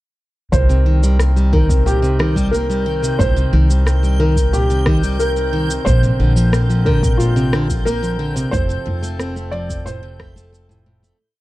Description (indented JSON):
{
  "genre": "folktronica",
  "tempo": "90 BPM",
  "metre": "4/4",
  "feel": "straight",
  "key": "C dorian",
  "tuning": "A4 = 441 Hz",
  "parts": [
    { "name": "felt-muted upright piano", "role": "melody", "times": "0.5-10.5 s", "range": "F4 to D5", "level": "-22 LUFS", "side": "right 1 dB", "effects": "tape echo" },
    { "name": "pedal harmonium", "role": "sustained chords", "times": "0.5-11.2 s", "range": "D3 to Bb4", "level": "-28 LUFS", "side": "left 2 dB", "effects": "stereo widening" },
    { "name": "picked plugged-in steel-string acoustic guitar", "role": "arpeggios", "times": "0.5-11.2 s", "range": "A2 to C4", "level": "-21 LUFS", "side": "equal", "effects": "vintage 12-bit sampler grit" },
    { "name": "upright bass", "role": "bass", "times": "0.5-11.1 s", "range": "F1 to C2", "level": "-17 LUFS", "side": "equal", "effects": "none" },
    { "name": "electronic kick drum", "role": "drums", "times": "0.5-10.3 s", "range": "none", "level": "-19 LUFS", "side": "equal", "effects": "none" },
    { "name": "electronic shaker and rim click", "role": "drums", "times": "0.5-11.2 s", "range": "none", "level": "-26 LUFS", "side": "left 1 dB", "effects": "none" },
    { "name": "backwards swelling texture", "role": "texture", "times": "1.6-11.2 s", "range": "G6", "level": "-32 LUFS", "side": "equal", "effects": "built-in reverb" }
  ],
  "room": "little or no reverb",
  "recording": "dry, close 1970s-style studio recording",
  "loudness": "-14 LUFS",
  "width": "side -17 dB against mid",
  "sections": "0.5-11.2 groove",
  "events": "fade-out 7.6-11.2",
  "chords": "0.5 Cm7; 5.9 Bbadd9; 8.5 F"
}